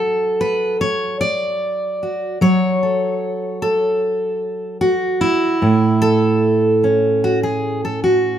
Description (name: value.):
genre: folk, solo fingerstyle acoustic guitar.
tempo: 74 BPM.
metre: 4/4.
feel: straight.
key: unclear.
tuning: A4 = 439 Hz.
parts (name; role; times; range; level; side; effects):
fingerpicked steel-string acoustic guitar; solo; 0.0-8.4 s; A2 to D5; -15 LUFS; right 1 dB; none.
room: light reverb.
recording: minimal, uncompressed stereo recording.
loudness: -15 LUFS.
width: side -10 dB against mid.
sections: 0.0-8.4 A section.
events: none.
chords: 0.0 F#m; 5.6 A.